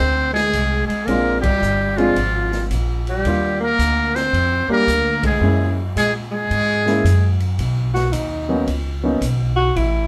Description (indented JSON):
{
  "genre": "jazz, small-group swing and bop",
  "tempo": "111 BPM",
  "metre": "4/4",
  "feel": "swing 66% on 8ths",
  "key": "unclear",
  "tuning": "A4 = 440 Hz",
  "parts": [
    { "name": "trumpet with metal mute", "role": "melody", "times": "0.0-7.4 s", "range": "F4 to C5", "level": "-23 LUFS", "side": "equal", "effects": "none" },
    { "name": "warm alto saxophone", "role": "second line", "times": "0.0-10.1 s", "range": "F3 to F#4", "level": "-25 LUFS", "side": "equal", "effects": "none" },
    { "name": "upright bass", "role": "bass", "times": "0.0-10.1 s", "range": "G1 to Bb2", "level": "-23 LUFS", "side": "equal", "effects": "none" },
    { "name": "open jazz drum kit", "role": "drums", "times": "0.4-9.9 s", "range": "hi-hat, kick drum, ride cymbal, snare drum", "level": "-32 LUFS", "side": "equal", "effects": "none" },
    { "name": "warm baby grand piano", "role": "accompaniment", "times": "1.1-9.2 s", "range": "F#3 to G4", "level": "-23 LUFS", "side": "equal", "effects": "none" }
  ],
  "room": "moderate studio reverb, RT60 0.7 s",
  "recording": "band playing live in one room",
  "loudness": "-19 LUFS",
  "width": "mono",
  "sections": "0.0-7.6 A section; 7.6-10.1 B section",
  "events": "band accent 1.3, 5.1; alto saxophone solo 7.6-10.1",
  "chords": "0.0 Fm (rootless); 1.1 Bb7; 3.2 Ebmaj9; 5.4 Gb7; 7.6 Bmaj7"
}